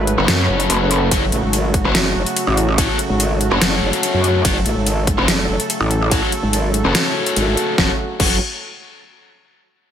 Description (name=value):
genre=heavy wobble dubstep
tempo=144 BPM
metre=4/4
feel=half-time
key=F# minor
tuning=A4 = 438 Hz
part: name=supersaw pad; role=sustained chords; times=0.0-8.0 s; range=C#3 to B4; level=-23 LUFS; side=right 1 dB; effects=sidechain pumping
part: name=metallic wobble bass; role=bass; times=0.0-8.4 s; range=F#1 to F#2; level=-19 LUFS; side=equal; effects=chorus, overdrive
part: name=dubstep drum kit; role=drums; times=0.1-8.3 s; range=crash cymbal, hi-hat, ride cymbal, snare drum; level=-20 LUFS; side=left 1 dB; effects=overdrive
part: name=distorted electric guitar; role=stabs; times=0.2-8.4 s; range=F#4 to C#5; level=-22 LUFS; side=left 3 dB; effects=distortion, digital delay
part: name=pulsing pluck wobble bass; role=bass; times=0.2-6.9 s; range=F#1 to F#2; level=-17 LUFS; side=equal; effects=chorus, overdrive
part: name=electronic kick drum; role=drums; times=1.1-8.3 s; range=none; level=-21 LUFS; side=equal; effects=overdrive
room=light reverb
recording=none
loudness=-14 LUFS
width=side -9 dB against mid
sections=0.0-7.8 A section; 7.8-9.4 B section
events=drop 0.0-7.8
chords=0.0 F#m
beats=0.28 0.70 | 1.11 1.53 1.95 2.37 | 2.78 3.20 3.62 4.03 | 4.45 4.87 5.28 5.70 | 6.12 6.53 6.95 7.37 | 7.78 8.20